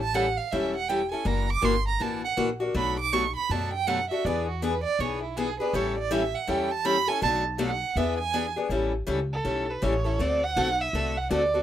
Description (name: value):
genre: acoustic string swing (jazz manouche)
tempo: 161 BPM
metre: 4/4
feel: swing 61% on 8ths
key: A mixolydian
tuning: A4 = 441 Hz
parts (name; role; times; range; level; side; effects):
- warm violin; second line; 0.0-8.5 s; E4 to D6; -28 LUFS; right 7 dB; none
- upright bass; bass; 0.0-11.6 s; E1 to F#2; -32 LUFS; equal; none
- picked steel-string acoustic guitar; accompaniment; 0.1-11.6 s; B2 to A4; -28 LUFS; left 3 dB; none
- warm violin; melody; 9.3-11.6 s; A4 to F#5; -26 LUFS; right 2 dB; none
room: light reverb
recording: rough home demo mix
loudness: -24 LUFS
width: side -11 dB against mid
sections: 0.0-8.7 A section; 8.7-11.6 B section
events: violin solo 0.0-8.7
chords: 0.0 A7; 1.3 F#7alt; 2.8 Bm7; 4.2 E7; 5.7 A7; 7.2 Bm7; 8.0 E7; 8.7 A7; 10.2 D7